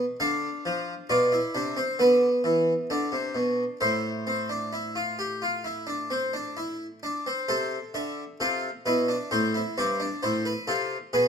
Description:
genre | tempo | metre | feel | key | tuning
classical, baroque-style 3-part fugue for harpsichord | 66 BPM | 4/4 | straight | A minor | A4 = 440 Hz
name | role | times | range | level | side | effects
harpsichord | solo | 0.0-11.3 s | G2 to F5 | -24 LUFS | equal | none
room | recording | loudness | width
moderate stone room reverb, RT60 1.3 s | none | -24 LUFS | side -7 dB against mid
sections
0.0-7.5 A section; 7.5-11.3 B section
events
none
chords
0.2 Bdim/D; 2.0 E5/D; 3.8 Am; 7.5 Am/C; 9.3 Am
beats
| 0.20 1.09 1.98 2.88 | 3.80 4.71 5.64 6.56 | 7.48 8.39 9.31 10.22 | 11.12

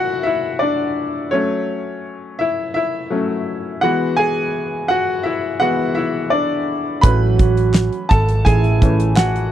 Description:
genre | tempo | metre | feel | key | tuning
piano-driven pop | 84 BPM | 4/4 | straight | A major | A4 = 440 Hz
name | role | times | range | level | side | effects
clear upright piano | accompaniment | 0.0-9.5 s | E3 to B5 | -18 LUFS | left 2 dB | none
mellow French horn section | second line | 7.0-9.2 s | E3 to F#4 | -22 LUFS | right 12 dB | none
hollow-body short-scale picked electric bass | bass | 7.0-9.5 s | G#1 to A1 | -16 LUFS | right 1 dB | none
damped 70s drum kit | drums | 7.0-9.5 s | handclaps, hi-hat, kick drum, snare drum | -15 LUFS | right 1 dB | none
room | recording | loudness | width
small room ambience | dry, close 1970s-style studio recording | -15 LUFS | side -11 dB against mid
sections
0.0-9.5 A section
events
upright piano solo 0.0-9.5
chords
0.0 Bm; 1.3 F#m; 3.8 E; 7.0 A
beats
0.62 | 1.33 2.05 2.76 3.47 | 4.18 4.90 5.61 6.32 | 7.04 7.75 8.46 9.18

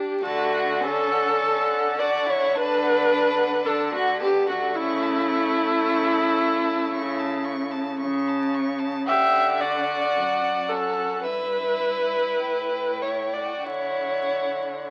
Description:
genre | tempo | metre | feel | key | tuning
classical, slow romantic movement for string quartet | 46-56 BPM | 4/4 | rubato | D major | A4 = 440 Hz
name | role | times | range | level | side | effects
rich violin | second line | 0.0-14.9 s | A3 to G4 | -32 LUFS | equal | none
rich viola | accompaniment | 0.0-14.9 s | E4 to E5 | -25 LUFS | equal | none
clear violin | melody | 0.2-14.9 s | E5 to C#6 | -35 LUFS | equal | none
rich cello | bass | 0.2-14.9 s | F#2 to D3 | -32 LUFS | equal | none
room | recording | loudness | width
moderate stone room reverb, RT60 1.1 s | very old 78 rpm record, vinyl crackle | -23 LUFS | mono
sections
0.2-14.9 A section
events
none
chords
0.2 D; 4.8 A/C#; 9.1 D; 11.2 Em/G; 12.4 Asus2; 13.7 D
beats
| 0.22 1.40 2.55 3.66 | 4.75 5.84 6.92 7.99 | 9.07 10.15 11.24 12.40 | 13.65

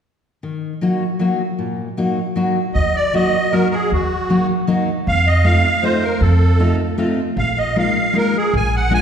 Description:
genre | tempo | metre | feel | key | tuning
musette waltz | 156 BPM | 3/4 | swing 54% on 8ths | unclear | A4 = 439 Hz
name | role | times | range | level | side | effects
fingerpicked steel-string acoustic guitar | accompaniment | 0.4-9.0 s | Bb2 to Gb4 | -19 LUFS | left 1 dB | none
musette accordion | melody | 2.7-9.0 s | Gb4 to Ab5 | -18 LUFS | right 2 dB | none
upright bass | bass | 2.8-9.0 s | Bb1 to F2 | -18 LUFS | equal | none
room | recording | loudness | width
wet scoring stage reverb, RT60 1.9 s | heard from further back in the room | -15 LUFS | side -8 dB against mid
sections
0.4-2.8 A section; 2.8-9.0 B section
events
none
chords
0.4 Ebm; 5.1 F7; 7.4 Bb7sus4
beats
| 0.43 0.82 1.20 | 1.59 1.97 2.36 | 2.75 3.14 3.53 | 3.91 4.30 4.68 | 5.06 5.45 5.83 | 6.21 6.59 6.98 | 7.37 7.76 8.14 | 8.53 8.91

